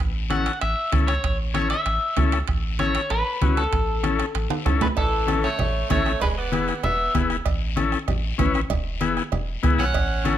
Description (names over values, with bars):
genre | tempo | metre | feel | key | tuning
latin, cumbia | 193 BPM | 4/4 | straight | A major | A4 = 440 Hz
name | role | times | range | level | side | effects
soft dub sub bass | bass | 0.0-10.4 s | E1 to C#2 | -26 LUFS | equal | none
bombo | percussion | 0.0-10.4 s | none | -27 LUFS | right 3 dB | none
congas | percussion | 0.0-10.4 s | none | -30 LUFS | left 2 dB | none
electric guitar at the edge of break-up | melody | 0.3-7.1, 9.8-10.4 s | A4 to F#5 | -26 LUFS | left 1 dB | spring reverb, slapback echo
combo organ | accompaniment | 0.3-10.4 s | B3 to B4 | -26 LUFS | left 6 dB | none
guiro | percussion | 0.3-10.4 s | none | -38 LUFS | left 9 dB | none
timbales and cowbell | percussion | 0.3-10.4 s | none | -32 LUFS | right 11 dB | none
raspy tenor saxophone | second line | 4.8-7.1, 9.8-10.4 s | E3 to C#4 | -30 LUFS | right 7 dB | none
room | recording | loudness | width
light reverb | close, detailed microphones | -20 LUFS | side -11 dB against mid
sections
0.0-5.0 A section; 5.0-10.4 B section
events
drum fill 4.5-5.0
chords
0.0 A; 6.2 E7; 7.5 A; 8.7 E